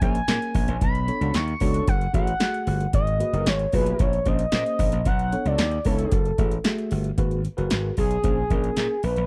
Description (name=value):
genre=early-eighties boogie funk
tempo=113 BPM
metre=4/4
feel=straight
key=unclear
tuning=A4 = 440 Hz
part: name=expressive portamento lead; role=melody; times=0.0-9.3 s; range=G#4 to C#6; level=-29 LUFS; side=equal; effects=chorus, slapback echo
part: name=tine electric piano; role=accompaniment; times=0.0-8.9 s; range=A3 to E5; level=-32 LUFS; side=equal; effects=lush chorus
part: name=slap bass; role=bass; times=0.0-9.3 s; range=F#1 to A#2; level=-28 LUFS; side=equal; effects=none
part: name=electro analog drum machine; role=drums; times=0.0-9.3 s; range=handclaps, hi-hat, kick drum, snare drum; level=-27 LUFS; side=equal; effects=none
part: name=mellow synth brass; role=second line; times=1.2-6.2 s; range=C#4 to B4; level=-36 LUFS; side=equal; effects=chorus
room=little or no reverb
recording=dry, close 1970s-style studio recording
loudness=-23 LUFS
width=mono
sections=0.0-7.2 A section; 7.2-9.3 B section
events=analog synth lead solo 7.2-9.3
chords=0.0 A#m9; 0.8 Bm9; 1.9 F#m9; 2.9 G#m9; 4.0 A#m9; 5.1 Bm9; 6.1 F#m9; 7.2 G#m9; 8.2 A#m9